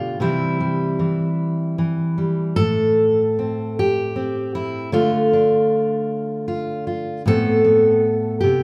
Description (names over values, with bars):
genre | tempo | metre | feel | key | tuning
folk, solo fingerstyle acoustic guitar | 51 BPM (dotted quarters) | 6/8 | straight | unclear | A4 = 440 Hz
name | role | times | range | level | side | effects
fingerpicked steel-string acoustic guitar | solo | 0.0-8.6 s | A2 to A4 | -20 LUFS | equal | none
room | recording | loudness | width
wet large studio reverb, RT60 1.3 s | band playing live in one room | -20 LUFS | mono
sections
0.0-2.6 A section; 2.6-8.6 B section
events
none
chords
0.2 C; 2.6 Am; 4.9 Dm; 7.3 Amadd9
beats
| 0.22 1.40 | 2.58 3.75 | 4.92 6.09 | 7.26 8.43